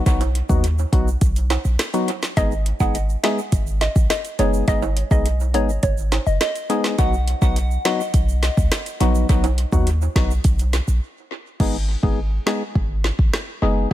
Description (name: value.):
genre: dancehall.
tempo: 104 BPM.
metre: 4/4.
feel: straight.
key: unclear.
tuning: A4 = 441 Hz.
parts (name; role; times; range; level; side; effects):
percussive organ stab; accompaniment; 0.0-13.9 s; F#3 to G#4; -24 LUFS; left 2 dB; chorus, sidechain pumping.
warm 808-style bass; bass; 0.1-13.9 s; F#1 to D#2; -20 LUFS; equal; none.
afro-pop drum kit; drums; 0.1-13.9 s; crash cymbal, hi-hat, kick drum, rim click, snare drum; -21 LUFS; equal; overdrive, analog delay.
tube shaker and timbales; percussion; 0.1-11.0 s; none; -32 LUFS; right 10 dB; analog delay.
hollow square pluck; melody; 2.4-6.4 s; C#5 to F#5; -26 LUFS; equal; chorus, analog delay.
soft synth bell; second line; 6.4-9.0 s; D#5 to F#5; -28 LUFS; equal; chorus, phaser, analog delay.
room: little or no reverb.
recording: echo-heavy mix.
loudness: -17 LUFS.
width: side -14 dB against mid.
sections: 0.0-11.6 A section; 11.6-13.9 B section.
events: break 11.0-11.6; hi-hats muted 11.6-13.9.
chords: 0.0 B; 2.4 G#m; 7.0 B; 11.6 G#m.